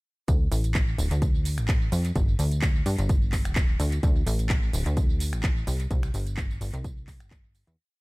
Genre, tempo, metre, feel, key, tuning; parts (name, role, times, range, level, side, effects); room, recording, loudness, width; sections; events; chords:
piano house; 128 BPM; 4/4; swing 54% on 16ths; D minor; A4 = 440 Hz
plucky analog bass; bass; 0.3-7.8 s; D1 to G2; -26 LUFS; equal; tube saturation, sidechain pumping
electronic kick drum; drums; 0.3-7.4 s; -24 LUFS; equal
house drum kit; drums; 0.3-7.8 s; finger snaps, handclaps, hi-hat, tambourine; -35 LUFS; right 1 dB; tape echo
digital ambience; echo-heavy mix; -23 LUFS; side -24 dB against mid
0.3-7.8 groove
fade-out 5.3-7.8